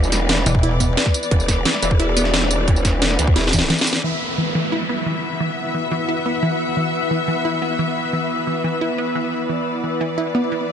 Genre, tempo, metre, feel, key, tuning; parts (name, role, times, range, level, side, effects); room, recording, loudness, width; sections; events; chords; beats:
dark technical drum and bass; 176 BPM; 4/4; straight; A4 = 437 Hz
rich studio string section; sustained chords; 0.0-10.7 s; E3 to E5; -24 LUFS; left 2 dB; sidechain pumping
wide unison pluck; arpeggios; 0.0-10.6 s; E3 to E4; -24 LUFS; equal; cassette tape, sidechain pumping, ping-pong delay
growl bass; bass; 0.0-3.7 s; E1 to D2; -20 LUFS; equal; chorus, overdrive
drum and bass drum kit; drums; 0.0-4.1 s; crash cymbal, hi-hat, snare drum, tambourine; -20 LUFS; equal; overdrive, low-pass filter on hats, low-pass filter on perc, low-pass filter on snare, low-pass filter on cymbals
pulsing pluck wobble bass; bass; 0.5-1.0 s; E1; -19 LUFS; equal; chorus
electronic kick drum; drums; 0.5-3.6 s; -18 LUFS; equal; overdrive
downlifter; sound effects; 4.0-6.8 s; -27 LUFS; right 2 dB
granular cloud pad; texture; 5.2-10.7 s; E4 to E6; -25 LUFS; left 1 dB; built-in reverb, sidechain pumping
light reverb; nothing above 10.9 kHz; -17 LUFS; side -8 dB against mid
0.0-4.0 A section; 4.0-10.7 B section
drop 0.0-4.0; drum fill 3.4-4.0; band accent 3.9
0.0 E5
0.29 0.63 0.97 | 1.31 1.66 2.00 2.34 | 2.68 3.02 3.36 3.70 | 4.04 4.38 4.72 5.06 | 5.41 5.75 6.09 6.43 | 6.77 7.11 7.45 7.79 | 8.13 8.47 8.81 9.15 | 9.50 9.84 10.18 10.52